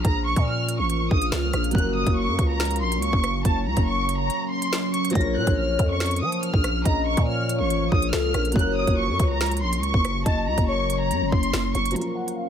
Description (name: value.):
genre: hip hop, drill.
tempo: 141 BPM.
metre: 4/4.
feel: half-time.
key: Bb minor.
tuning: A4 = 440 Hz.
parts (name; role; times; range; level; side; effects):
warm studio violin section; melody; 0.0-12.5 s; F5 to Bb6; -27 LUFS; right 1 dB; low-pass filter.
dark baby grand piano; accompaniment; 0.0-12.5 s; F3 to Bb4; -31 LUFS; right 1 dB; low-pass filter.
deep dark ambient pad; sustained chords; 0.0-12.5 s; Bb2 to Bb4; -30 LUFS; left 1 dB; chorus, built-in reverb, low-pass filter.
growling 808-style bass; bass; 0.0-12.0 s; Gb1 to F3; -26 LUFS; equal; none.
drill drum kit; drums; 0.0-12.4 s; finger snaps, hi-hat, kick drum, rim click, snare drum; -24 LUFS; equal; none.
hollow clarinet-like synth lead; second line; 5.2-11.5 s; A4 to Eb5; -30 LUFS; left 5 dB; chorus, ping-pong delay.
room: little or no reverb.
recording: none.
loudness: -20 LUFS.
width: side -8 dB against mid.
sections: 0.0-12.0 A section.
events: kick muted 4.3-5.2.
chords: 0.0 Bbm; 1.7 Gb; 5.2 Bbm; 8.6 Gb; 12.0 Bbm.